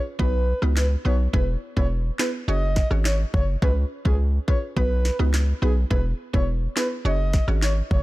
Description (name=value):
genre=dancehall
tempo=105 BPM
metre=4/4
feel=straight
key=unclear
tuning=A4 = 445 Hz
part: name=mallet-like synth pluck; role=accompaniment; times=0.0-7.6 s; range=B3 to C#5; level=-31 LUFS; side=right 2 dB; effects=chorus
part: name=breathy flute-like synth lead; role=melody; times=0.2-8.0 s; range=G#4 to D#5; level=-30 LUFS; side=equal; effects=chorus
part: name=hard-hitting 808-style bass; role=bass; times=0.2-8.0 s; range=E1 to C#2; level=-22 LUFS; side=equal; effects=none
part: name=island pop drum kit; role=drums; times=0.2-8.0 s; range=handclaps, kick drum, rim click, snare drum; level=-24 LUFS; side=equal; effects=overdrive
room=digital ambience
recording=dark, warm production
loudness=-20 LUFS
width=side -18 dB against mid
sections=0.0-8.0 A section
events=none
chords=0.2 B; 1.3 E; 2.5 F#sus2; 3.6 C#7; 4.8 B; 5.9 E; 7.1 F#sus2